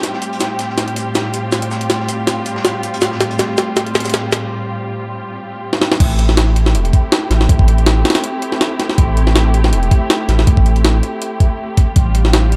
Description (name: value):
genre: drum and bass, jungle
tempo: 161 BPM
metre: 4/4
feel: swing 54% on 16ths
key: A minor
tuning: A4 = 442 Hz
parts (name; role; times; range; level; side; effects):
- muted studio string section; sustained chords; 0.0-12.6 s; A2 to G4; -23 LUFS; equal; vintage 12-bit sampler grit
- crunchy breakbeat drum kit; drums; 0.0-4.4 s; hi-hat, shaker, snare drum; -32 LUFS; equal; none
- jungle sampler-style drum kit; drums; 0.0-12.6 s; crash cymbal, hi-hat, kick drum, snare drum; -17 LUFS; equal; none
- saturated sub bass; bass; 6.0-12.6 s; E1 to A1; -15 LUFS; equal; none
room: light reverb, small room reverb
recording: dark, warm production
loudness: -15 LUFS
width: mono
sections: 0.0-6.0 A section; 6.0-12.6 B section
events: build-up 0.0-6.0; drum fill 0.0-4.5, 5.7; break 4.5-6.0; drop 6.0-12.6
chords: 0.0 Csus4/A; 6.0 Am7; 12.0 Csus4